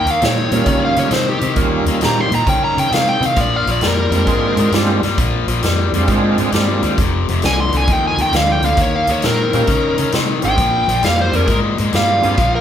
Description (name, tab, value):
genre	electric blues shuffle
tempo	133 BPM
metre	4/4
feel	swing 67% on 8ths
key	unclear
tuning	A4 = 440 Hz
part	smooth overdriven lead guitar	melody	0.0-4.7, 7.5-12.6 s	G4 to C6	-17 LUFS	right 1 dB	none
part	overdriven electric guitar	riff	0.0-12.6 s	F2 to Db4	-20 LUFS	left 5 dB	none
part	vintage muted fingered electric bass	bass	0.0-12.6 s	F1 to Db3	-20 LUFS	right 1 dB	none
part	swinging big-band drum kit	drums	0.1-12.5 s	hi-hat, kick drum, snare drum	-20 LUFS	equal	none
part	overdriven tonewheel organ	accompaniment	0.5-12.4 s	G3 to Ab4	-20 LUFS	right 4 dB	slow rotary speaker, chorus vibrato
room	moderate large studio reverb, RT60 1.1 s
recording	band playing live in one room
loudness	-13 LUFS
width	side -9 dB against mid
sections	0.0-12.6 A section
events	none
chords	0.0 Eb7; 3.4 Bb7; 7.0 F5; 8.8 Eb7; 10.6 Bb7